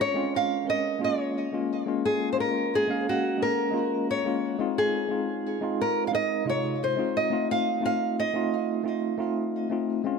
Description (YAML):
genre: chillout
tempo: 88 BPM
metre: 4/4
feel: swing 54% on 16ths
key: unclear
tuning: A4 = 445 Hz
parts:
  - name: nylon-string guitar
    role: melody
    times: 0.0-9.8 s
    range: Gb4 to F5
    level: -27 LUFS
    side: equal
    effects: digital delay
  - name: tine electric piano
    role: accompaniment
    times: 0.0-10.2 s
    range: C3 to F5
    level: -28 LUFS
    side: moving between left 8 dB and right 8 dB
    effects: medium tremolo, auto-pan, tape echo
room: moderate plate reverb, RT60 2.8 s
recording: none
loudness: -24 LUFS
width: side -5 dB against mid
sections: 0.0-10.2 A section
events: none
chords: 0.0 Bbm7; 2.0 Absus4; 4.8 Bb9sus4 (rootless); 7.5 F7